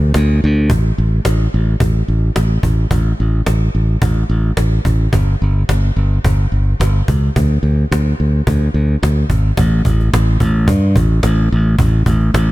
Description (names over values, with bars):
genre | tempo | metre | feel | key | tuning
rock, shoegaze and dream pop | 108 BPM | 4/4 | straight | unclear | A4 = 440 Hz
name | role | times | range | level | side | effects
modern bright fingered electric bass | bass | 0.0-12.5 s | G1 to G2 | -13 LUFS | equal | none
cajon | drums | 0.1-12.5 s | none | -20 LUFS | equal | none
room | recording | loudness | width
little or no reverb | none | -12 LUFS | side -18 dB against mid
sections
0.7-9.6 A section; 9.6-12.5 B section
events
none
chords
none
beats
0.15 | 0.70 1.25 1.81 2.36 | 2.92 3.47 4.03 4.58 | 5.14 5.69 6.25 6.80 | 7.36 7.92 8.47 9.02 | 9.58 10.13 10.69 11.24 | 11.79 12.35